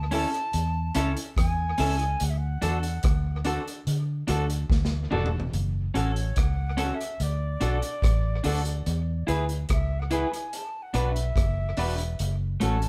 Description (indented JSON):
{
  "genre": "roots reggae",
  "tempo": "72 BPM",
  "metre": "4/4",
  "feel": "straight",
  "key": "unclear",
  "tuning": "A4 = 439 Hz",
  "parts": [
    { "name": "silver concert flute", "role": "melody", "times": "0.0-12.9 s", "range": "C#5 to A5", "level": "-36 LUFS", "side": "equal", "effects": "none" },
    { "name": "vintage muted fingered electric bass", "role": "bass", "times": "0.0-12.9 s", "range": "E1 to D3", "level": "-29 LUFS", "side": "equal", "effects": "none" },
    { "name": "electric guitar at the edge of break-up", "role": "accompaniment", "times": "0.1-12.8 s", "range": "A3 to B4", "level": "-33 LUFS", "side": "equal", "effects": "none" },
    { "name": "warm concert grand piano", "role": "stabs", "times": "0.1-12.8 s", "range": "C#4 to B4", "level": "-35 LUFS", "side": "equal", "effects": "none" },
    { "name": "vintage drum kit", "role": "drums", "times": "0.1-12.9 s", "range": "hi-hat, kick drum, rim click, snare drum, toms", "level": "-32 LUFS", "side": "equal", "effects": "none" }
  ],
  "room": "light reverb",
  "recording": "band playing live in one room",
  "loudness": "-27 LUFS",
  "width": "mono",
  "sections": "0.0-5.5 A section; 5.5-12.9 B section",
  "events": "drum fill 4.7-5.5; flute solo 5.5-12.9",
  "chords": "0.0 A; 2.2 D; 5.5 F#m; 7.2 D; 8.9 E; 10.5 Bm; 12.2 F#m"
}